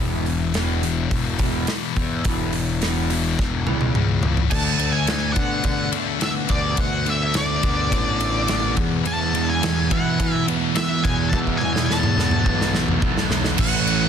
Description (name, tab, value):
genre	quiet-loud alternative rock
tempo	106 BPM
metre	4/4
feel	straight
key	unclear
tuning	A4 = 439 Hz
part	electric guitar through a small old amp	arpeggios	0.0-13.6 s	E2 to B3	-30 LUFS	right 3 dB	wide subtle chorus
part	sludgy distorted guitar	riff	0.0-14.1 s	E2 to D4	-25 LUFS	left 11 dB	overdrive
part	fuzz picked electric bass	bass	0.0-14.1 s	E1 to E3	-25 LUFS	right 1 dB	overdrive
part	big rock drum kit	drums	0.3-14.0 s	crash cymbal, hi-hat, kick drum, ride cymbal, snare drum, toms	-24 LUFS	equal	soft clipping on snare
part	octave-fuzz lead guitar	melody	4.5-14.1 s	D5 to A5	-25 LUFS	equal	distortion, analog delay
part	thick fuzz guitar	riff	9.1-14.1 s	E2 to A3	-25 LUFS	right 13 dB	distortion
part	percussive tonewheel organ	sustained chords	13.6-14.1 s	E3 to B4	-33 LUFS	right 3 dB	none
room	little or no reverb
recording	dense, heavily limited modern master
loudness	-18 LUFS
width	side -8 dB against mid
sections	0.0-4.5 A section; 4.5-13.6 B section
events	drum fill 3.4-4.5, 11.3-13.6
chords	0.0 E5; 4.5 D5; 8.8 Esus4